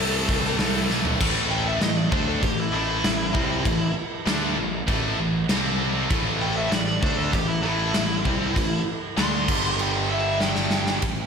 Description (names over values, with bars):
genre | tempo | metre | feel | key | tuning
hard rock | 98 BPM | 4/4 | straight | A minor | A4 = 440 Hz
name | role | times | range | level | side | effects
high-gain lead guitar | melody | 0.0-11.0 s | E4 to C6 | -28 LUFS | equal | distortion, slapback echo, digital delay
heavy high-gain guitar | riff | 0.0-11.0 s | G2 to D4 | -30 LUFS | left 1 dB | distortion, slapback echo
tight distorted guitar | riff | 0.0-11.0 s | G2 to D4 | -30 LUFS | left 9 dB | distortion
tight distorted guitar | riff | 0.0-11.0 s | G2 to D4 | -30 LUFS | right 10 dB | distortion
fuzz picked electric bass | bass | 0.0-11.3 s | G1 to D2 | -28 LUFS | equal | overdrive
big rock drum kit | drums | 0.3-11.2 s | crash cymbal, hi-hat, kick drum, ride cymbal, snare drum, toms | -25 LUFS | equal | none
room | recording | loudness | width
moderate lush hall reverb, RT60 1.6 s, studio reverb | big arena sound | -21 LUFS | side -6 dB against mid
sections
0.0-1.2 A section; 1.2-11.0 B section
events
drum fill 0.9-1.2, 10.4-11.0; lead electric guitar solo 1.2-11.0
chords
0.0 Am/C; 1.2 Am; 5.5 C5; 6.1 Am; 9.5 G5